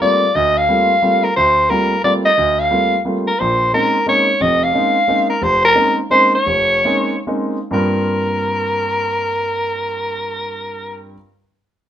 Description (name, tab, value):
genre	jazz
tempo	125-178 BPM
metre	3/4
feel	swing 64% on 8ths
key	G phrygian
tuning	A4 = 440 Hz
part	growling soprano saxophone	melody	0.0-11.1 s	Bb4 to F5	-14 LUFS	equal	none
part	warm baby grand piano	accompaniment	0.0-11.2 s	F1 to Bb4	-20 LUFS	right 1 dB	none
room	moderate studio reverb, RT60 0.8 s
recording	minimal, uncompressed stereo recording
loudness	-13 LUFS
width	side -10 dB against mid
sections	0.0-7.7 A section; 7.7-10.6 B section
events	slowing down 5.4-7.7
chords	0.0 Gm11; 3.4 Bbm11; 7.7 Gm7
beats	0.01 | 0.35 0.69 1.02 | 1.36 1.70 2.04 | 2.37 2.71 3.05 | 3.38 3.72 4.06 | 4.39 4.73 5.07 | 5.40 5.74 6.09 | 6.46 6.84 7.26 | 7.71 8.19 8.67 | 9.15 9.63 10.11